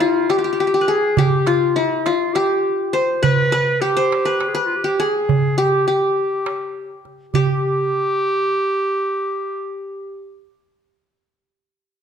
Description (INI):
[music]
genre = Turkish makam ensemble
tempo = 204 BPM (eighths)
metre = 7/8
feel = straight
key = G makam hicaz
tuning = A4 = 438 Hz
[part]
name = qanun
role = melody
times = 0.0-10.4 s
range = E4-40c to C5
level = -18 LUFS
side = left 2 dB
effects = none
[part]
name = clear clarinet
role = second line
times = 0.0-10.3 s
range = E4-44c to B4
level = -22 LUFS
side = equal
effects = none
[part]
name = darbuka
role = percussion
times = 0.0-7.6 s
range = none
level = -20 LUFS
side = right 5 dB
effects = none
[sound]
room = moderate recital hall reverb, RT60 1.3 s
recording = dark, warm production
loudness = -16 LUFS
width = side -8 dB against mid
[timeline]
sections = 0.0-7.3 A section; 7.3-11.5 B section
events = none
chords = none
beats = 0.00 0.30 0.59 0.88 | 1.18 1.47 1.76 2.06 2.35 2.64 2.94 | 3.23 3.52 3.82 4.11 4.41 4.70 4.99 | 5.29 5.58 5.87 6.17 6.46 6.75 7.05 | 7.34 7.64 7.93 8.22 8.52 8.81 9.11 | 9.40 9.69 9.99 10.28